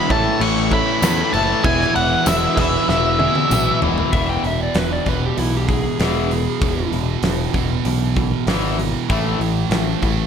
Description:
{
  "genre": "classic rock",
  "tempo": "97 BPM",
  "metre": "4/4",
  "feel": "straight",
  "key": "E major",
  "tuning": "A4 = 440 Hz",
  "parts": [
    { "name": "octave-fuzz lead guitar", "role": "melody", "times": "0.0-3.8 s", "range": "E5 to C#6", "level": "-20 LUFS", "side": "equal", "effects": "distortion, digital delay" },
    { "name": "bright concert grand piano", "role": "accompaniment", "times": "0.0-3.9 s", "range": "E4 to E5", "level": "-27 LUFS", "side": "right 4 dB", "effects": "none" },
    { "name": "distorted electric guitar", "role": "riff", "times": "0.0-10.3 s", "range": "E2 to E4", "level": "-24 LUFS", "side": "right 15 dB", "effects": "distortion" },
    { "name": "overdriven electric guitar", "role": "riff", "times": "0.0-10.3 s", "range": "E2 to A3", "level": "-24 LUFS", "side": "left 13 dB", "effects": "none" },
    { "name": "overdriven semi-hollow guitar", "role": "riff", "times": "0.0-4.1 s", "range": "E2 to A3", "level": "-25 LUFS", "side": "equal", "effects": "spring reverb" },
    { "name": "modern bright picked electric bass", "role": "bass", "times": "0.1-10.3 s", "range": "E1 to E2", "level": "-23 LUFS", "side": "equal", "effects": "none" },
    { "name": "big rock drum kit", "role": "drums", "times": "0.1-10.2 s", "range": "crash cymbal, hi-hat, kick drum, snare drum, toms", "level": "-22 LUFS", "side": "equal", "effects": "none" },
    { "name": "tambourine", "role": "percussion", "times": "1.0-3.7 s", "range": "none", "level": "-30 LUFS", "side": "left 7 dB", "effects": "none" },
    { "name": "overdriven slide guitar", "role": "second line", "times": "4.1-6.9 s", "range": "E4 to G5", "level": "-26 LUFS", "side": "left 4 dB", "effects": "digital delay" }
  ],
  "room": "light reverb",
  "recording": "none",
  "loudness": "-16 LUFS",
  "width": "side -7 dB against mid",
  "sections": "0.0-4.1 A section; 4.1-10.3 B section",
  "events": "drum fill 2.9-4.1",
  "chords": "0.1 A; 1.6 E; 9.1 A5"
}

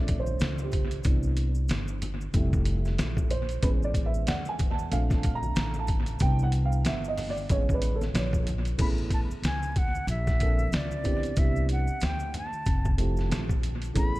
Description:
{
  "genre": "hip hop, jazz-hop",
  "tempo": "93 BPM",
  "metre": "4/4",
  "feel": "swing 58% on 16ths",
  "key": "unclear",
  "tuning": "A4 = 440 Hz",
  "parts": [
    { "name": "dark upright piano", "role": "accompaniment", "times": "0.0-14.2 s", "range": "E3 to Bb5", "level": "-33 LUFS", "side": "right 3 dB", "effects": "analog delay" },
    { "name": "upright bass", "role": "bass", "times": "0.0-14.2 s", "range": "F1 to E2", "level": "-28 LUFS", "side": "equal", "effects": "none" },
    { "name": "trip hop sampler-style drum kit", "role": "drums", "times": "0.1-14.1 s", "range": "crash cymbal, hi-hat, kick drum, snare drum", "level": "-28 LUFS", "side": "equal", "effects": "analog delay" },
    { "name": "maracas and congas", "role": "percussion", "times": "0.1-14.2 s", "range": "none", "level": "-42 LUFS", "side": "left 2 dB", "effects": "analog delay" },
    { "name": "concert flute", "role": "melody", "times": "8.8-14.2 s", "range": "D5 to B5", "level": "-34 LUFS", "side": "equal", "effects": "analog delay" }
  ],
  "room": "studio ambience",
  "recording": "echo-heavy mix",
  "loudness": "-25 LUFS",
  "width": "side -18 dB against mid",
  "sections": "0.0-8.8 A section; 8.8-14.2 B section",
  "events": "upright piano solo 0.0-8.8",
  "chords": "0.0 Bbmaj9; 1.1 Cmaj9; 2.3 Fmaj9; 3.6 Amaj9; 4.9 Bbmaj9; 6.2 Cmaj9; 7.5 Amaj9; 10.1 Bbmaj9; 11.4 Cmaj9; 12.7 Fmaj9"
}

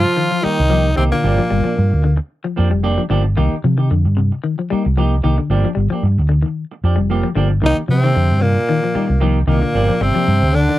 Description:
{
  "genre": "afrobeat",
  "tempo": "113 BPM",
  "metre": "4/4",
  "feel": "swing 55% on 16ths",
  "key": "C minor",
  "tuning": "A4 = 442 Hz",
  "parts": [
    { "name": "raspy tenor saxophone", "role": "melody", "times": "0.0-2.1, 7.7-10.8 s", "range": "Bb3 to F4", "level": "-19 LUFS", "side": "left 2 dB", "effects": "none" },
    { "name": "bright bass trombone", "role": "second line", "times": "0.0-2.1, 7.6-10.8 s", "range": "Bb2 to F3", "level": "-22 LUFS", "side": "right 4 dB", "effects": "none" },
    { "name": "semi-hollow electric guitar", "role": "arpeggios", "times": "0.0-10.8 s", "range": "C3 to G3", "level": "-21 LUFS", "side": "left 6 dB", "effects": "lush chorus" },
    { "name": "hollow-body short-scale fingered electric bass", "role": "bass", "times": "0.0-10.7 s", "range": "F1 to C3", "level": "-15 LUFS", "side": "equal", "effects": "none" },
    { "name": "semi-hollow electric guitar", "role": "stabs", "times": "0.1-10.7 s", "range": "Eb3 to G4", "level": "-23 LUFS", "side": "right 4 dB", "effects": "none" }
  ],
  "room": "little or no reverb",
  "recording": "dry, close 1970s-style studio recording",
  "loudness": "-14 LUFS",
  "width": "side -15 dB against mid",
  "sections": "0.0-10.8 A section",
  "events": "none",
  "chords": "0.0 Cm7; 1.2 Gm7; 3.4 Cm7; 5.5 Gm7; 7.6 Cm7; 9.7 Gm7"
}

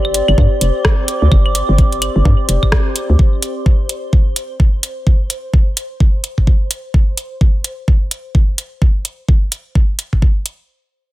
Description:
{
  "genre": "minimal techno",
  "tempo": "128 BPM",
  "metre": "4/4",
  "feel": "swing 60% on 16ths",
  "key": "unclear",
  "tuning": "A4 = 440 Hz",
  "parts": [
    { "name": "hollow knocking FM bass", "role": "bass", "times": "0.0-3.2 s", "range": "F1 to G2", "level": "-13 LUFS", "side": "equal", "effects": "sidechain pumping" },
    { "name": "claves", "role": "percussion", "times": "0.0-2.7 s", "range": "none", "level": "-23 LUFS", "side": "equal", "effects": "tape echo" },
    { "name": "swarming drone", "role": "texture", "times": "0.0-7.0 s", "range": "C5", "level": "-28 LUFS", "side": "equal", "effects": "built-in reverb, sidechain pumping" },
    { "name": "warbly tape-like pad", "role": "texture", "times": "0.0-3.2 s", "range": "C4 to D6", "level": "-21 LUFS", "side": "equal", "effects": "chorus, built-in reverb, sidechain pumping" },
    { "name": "garage drum kit", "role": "drums", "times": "0.1-10.6 s", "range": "hi-hat, rim click", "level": "-18 LUFS", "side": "equal", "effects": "none" },
    { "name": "electronic kick drum", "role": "drums", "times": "0.4-10.3 s", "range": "none", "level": "-12 LUFS", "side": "equal", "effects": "none" }
  ],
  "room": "little or no reverb",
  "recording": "none",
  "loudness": "-12 LUFS",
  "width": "side -17 dB against mid",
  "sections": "0.0-10.7 A section",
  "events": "none",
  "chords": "0.0 Gsus4"
}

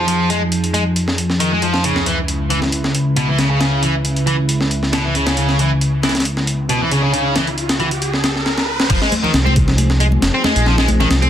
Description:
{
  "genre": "breakbeat, breaks",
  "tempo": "136 BPM",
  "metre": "4/4",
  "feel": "swing 53% on 16ths",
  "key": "unclear",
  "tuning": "A4 = 441 Hz",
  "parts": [
    { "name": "lush unison pad", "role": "sustained chords", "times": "0.0-11.3 s", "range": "Db2 to Cb5", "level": "-20 LUFS", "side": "equal", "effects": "chorus, vintage 12-bit sampler grit, sidechain pumping" },
    { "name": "overdriven electric guitar", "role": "riff", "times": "0.0-11.3 s", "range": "Cb3 to C4", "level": "-19 LUFS", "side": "equal", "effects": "dub echo" },
    { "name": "breakbeat sampler-style drum kit", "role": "drums", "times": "0.1-11.3 s", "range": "crash cymbal, hi-hat, kick drum, snare drum", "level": "-19 LUFS", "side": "equal", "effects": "high-pass filter on hats, high-pass filter on snare, high-pass filter on cymbals, high-pass filter on kick" },
    { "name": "riser", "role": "sound effects", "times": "6.3-8.9 s", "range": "none", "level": "-25 LUFS", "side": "right 1 dB", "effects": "none" },
    { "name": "dark detuned saw bass", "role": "bass", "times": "8.9-11.3 s", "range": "F1 to C2", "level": "-15 LUFS", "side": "equal", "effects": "none" },
    { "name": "congas", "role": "percussion", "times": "9.1-11.3 s", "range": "none", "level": "-22 LUFS", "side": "left 2 dB", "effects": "none" }
  ],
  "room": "wet small room reverb, RT60 0.5 s",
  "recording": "dense, heavily limited modern master, vinyl crackle",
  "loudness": "-14 LUFS",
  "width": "side -10 dB against mid",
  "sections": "0.0-8.9 A section; 8.9-11.3 B section",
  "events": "riser 6.3-8.9; drum fill 8.5-8.9; drop 8.9-11.3",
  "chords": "0.0 Fm7; 1.8 Dbm7; 8.9 Fm7"
}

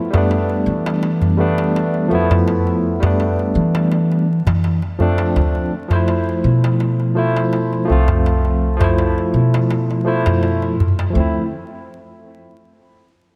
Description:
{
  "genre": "trip hop",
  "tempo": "83 BPM",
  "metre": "4/4",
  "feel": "swing 53% on 16ths",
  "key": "D dorian",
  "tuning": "A4 = 441 Hz",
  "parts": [
    { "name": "barky tine electric piano", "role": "accompaniment", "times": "0.0-11.4 s", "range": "F3 to C5", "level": "-21 LUFS", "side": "equal", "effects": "harmonic tremolo, tape echo" },
    { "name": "darbuka", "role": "percussion", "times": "0.1-11.1 s", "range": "none", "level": "-22 LUFS", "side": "equal", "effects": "none" },
    { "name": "upright bass", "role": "bass", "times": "0.7-11.5 s", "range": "C2 to E3", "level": "-21 LUFS", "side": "equal", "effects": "tube saturation" }
  ],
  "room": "moderate plate reverb, RT60 2.7 s",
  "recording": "dreamy mix soaked in reverb, vinyl crackle",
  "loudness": "-17 LUFS",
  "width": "mono",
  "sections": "0.0-5.4 A section; 5.4-11.1 B section; 11.1-13.4 C section",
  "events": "none",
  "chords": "0.0 G7; 5.4 Dm7 (rootless); 11.1 Dm7"
}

